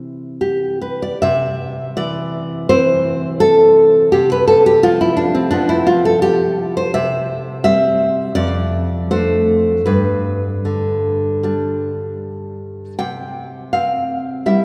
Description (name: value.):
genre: romantic piece for solo classical guitar.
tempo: 74-86 BPM.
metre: 4/4.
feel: rubato.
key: C major.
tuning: A4 = 441 Hz.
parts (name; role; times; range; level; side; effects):
nylon-string guitar; solo; 0.0-14.6 s; F2 to G5; -16 LUFS; equal; none.
room: wet church reverb, RT60 3.4 s.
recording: recorded in a church or concert hall.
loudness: -16 LUFS.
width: mono.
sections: 0.0-1.2 A section; 1.2-14.6 B section.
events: none.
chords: 0.0 C; 4.1 Fmaj9#11/C; 7.0 C; 8.4 Dm/F; 9.9 G; 13.0 C.